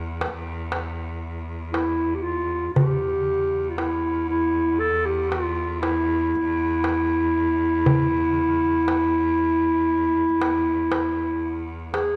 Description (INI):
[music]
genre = Turkish makam ensemble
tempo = 118 BPM (eighths)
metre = 10/8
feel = straight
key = E makam kurdi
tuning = A4 = 440 Hz
[part]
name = bright cello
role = drone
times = 0.0-12.2 s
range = E2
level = -33 LUFS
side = equal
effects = none
[part]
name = darbuka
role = percussion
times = 0.2-12.2 s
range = none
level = -28 LUFS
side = equal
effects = none
[part]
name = dark clarinet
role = melody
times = 1.7-12.2 s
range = E4 to A4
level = -23 LUFS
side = equal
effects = none
[sound]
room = light reverb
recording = dark, warm production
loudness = -23 LUFS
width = mono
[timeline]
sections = 0.0-12.2 A section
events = none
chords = none